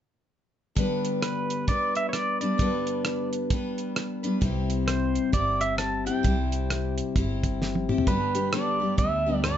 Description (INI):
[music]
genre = honky-tonk and classic country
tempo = 132 BPM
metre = 4/4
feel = swing 61% on 8ths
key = G major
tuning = A4 = 440 Hz
[part]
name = picked steel-string acoustic guitar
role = accompaniment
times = 0.8-9.6 s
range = G2 to B4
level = -28 LUFS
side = left 3 dB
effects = none
[part]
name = damped 70s drum kit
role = drums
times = 0.8-9.6 s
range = hi-hat, kick drum, rim click, snare drum, toms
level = -27 LUFS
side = right 1 dB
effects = none
[part]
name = pedal steel guitar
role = melody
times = 1.2-9.6 s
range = B4 to A5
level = -28 LUFS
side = right 2 dB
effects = none
[part]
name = upright bass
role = bass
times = 4.4-9.6 s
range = G1 to D2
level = -30 LUFS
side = right 1 dB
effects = none
[sound]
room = moderate studio reverb, RT60 0.5 s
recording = nothing above 7.9 kHz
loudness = -24 LUFS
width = side -10 dB against mid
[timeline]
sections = 0.8-8.1 A section; 8.1-9.6 B section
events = drum fill 7.6-8.1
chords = 0.8 G; 4.4 C; 8.1 G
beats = | 0.77 1.23 1.68 2.14 | 2.60 3.05 3.51 3.96 | 4.42 4.88 5.33 5.79 | 6.25 6.70 7.16 7.61 | 8.07 8.52 8.98 9.44